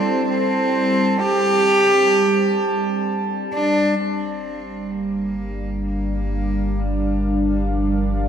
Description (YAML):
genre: ambient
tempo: 65 BPM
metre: 3/4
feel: straight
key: G dorian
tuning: A4 = 443 Hz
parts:
  - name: clear cello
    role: melody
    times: 0.0-8.3 s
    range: F3 to G4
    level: -20 LUFS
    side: equal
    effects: tape echo
  - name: warm analog pad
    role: sustained chords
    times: 0.0-8.3 s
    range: G3 to F5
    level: -23 LUFS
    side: right 1 dB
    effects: chorus
  - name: analog drone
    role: drone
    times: 0.7-8.3 s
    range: G3 to D4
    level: -34 LUFS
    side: equal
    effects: none
  - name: glass harmonica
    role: texture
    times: 0.0-4.0 s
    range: A5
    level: -27 LUFS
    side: right 4 dB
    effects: none
  - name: warm sub bass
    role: bass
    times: 4.0-8.3 s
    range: G1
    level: -24 LUFS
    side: equal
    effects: tube saturation
room: moderate plate reverb, RT60 3.1 s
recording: dreamy mix soaked in reverb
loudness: -17 LUFS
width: side -8 dB against mid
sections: 0.0-4.0 A section; 4.0-8.3 B section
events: none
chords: 0.0 Am7; 4.0 Gm7